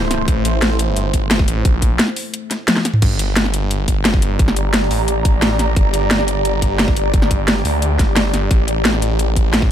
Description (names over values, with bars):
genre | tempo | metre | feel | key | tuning
dark technical drum and bass | 175 BPM | 4/4 | straight | G minor | A4 = 440 Hz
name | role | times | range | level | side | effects
dark analog pad | sustained chords | 0.0-3.0 s | A3 to C5 | -25 LUFS | equal | chorus, sidechain pumping
snarling distorted saw bass | bass | 0.0-9.7 s | G1 to D2 | -18 LUFS | equal | distortion, sidechain pumping
drum and bass drum kit | drums | 0.1-9.6 s | crash cymbal, hi-hat, snare drum, toms | -18 LUFS | equal | overdrive, studio reverb
electronic kick drum | drums | 0.3-9.7 s | none | -16 LUFS | equal | studio reverb
ethereal airy pad | texture | 4.1-9.7 s | G4 to C6 | -22 LUFS | equal | ensemble chorus, built-in reverb, sidechain pumping
room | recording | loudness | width
little or no reverb | none | -14 LUFS | side -10 dB against mid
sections
0.0-3.0 A section; 3.0-9.7 A section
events
drop 0.0-3.0, 3.0-9.7; drum fill 2.7-3.0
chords
0.0 Am; 3.0 Gm; 8.5 Adim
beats
| 0.28 0.62 0.96 1.31 | 1.65 1.99 2.34 2.68 | 3.02 3.37 3.71 4.05 | 4.39 4.74 5.08 5.42 | 5.76 6.11 6.45 6.79 | 7.14 7.48 7.82 8.16 | 8.51 8.85 9.19 9.54